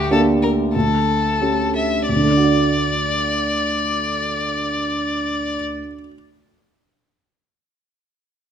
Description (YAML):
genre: quick classical-period movement for piano trio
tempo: 87-95 BPM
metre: 2/4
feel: straight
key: D major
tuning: A4 = 439 Hz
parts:
  - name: rich violin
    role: melody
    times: 0.0-5.6 s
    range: G4 to E5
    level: -21 LUFS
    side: left 4 dB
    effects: none
  - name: dark baby grand piano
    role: accompaniment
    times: 0.0-6.1 s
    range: D2 to D5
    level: -19 LUFS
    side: right 2 dB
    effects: none
room: wet recital hall reverb, RT60 1.3 s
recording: none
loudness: -17 LUFS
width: side -8 dB against mid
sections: 0.0-2.1 A section; 2.1-4.8 B section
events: slowing down 0.0-2.1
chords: 0.0 Gm/D; 0.7 A7/D; 2.1 D